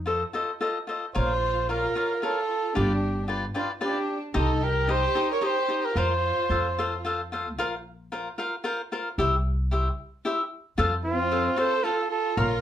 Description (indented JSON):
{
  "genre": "mexican folk, mariachi",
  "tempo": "112 BPM",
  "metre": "3/4",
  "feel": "rubato",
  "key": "unclear",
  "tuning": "A4 = 440 Hz",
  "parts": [
    { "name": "warm trumpet", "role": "melody", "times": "0.0-7.0, 11.0-12.6 s", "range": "F4 to Db5", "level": "-26 LUFS", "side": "right 2 dB", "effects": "none" },
    { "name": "upright bass", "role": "bass", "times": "0.0-12.6 s", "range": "G1 to F2", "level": "-28 LUFS", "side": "equal", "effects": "none" },
    { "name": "cavaquinho", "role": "accompaniment", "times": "0.1-12.5 s", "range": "Eb4 to C6", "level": "-28 LUFS", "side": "left 2 dB", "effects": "none" },
    { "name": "warm chamber violin section", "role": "second line", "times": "1.2-7.0, 11.1-12.6 s", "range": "C4 to Bb4", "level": "-31 LUFS", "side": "right 1 dB", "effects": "none" }
  ],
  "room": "moderate small room reverb, RT60 0.6 s",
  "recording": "heard from further back in the room",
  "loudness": "-24 LUFS",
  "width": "side -10 dB against mid",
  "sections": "0.0-1.2 A section; 1.2-12.6 B section",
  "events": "none",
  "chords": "0.0 F7; 1.2 Bbm; 2.8 G7; 4.3 Cm; 5.9 Fsus4; 6.5 F; 7.6 Bbsus2; 9.2 C; 10.8 F"
}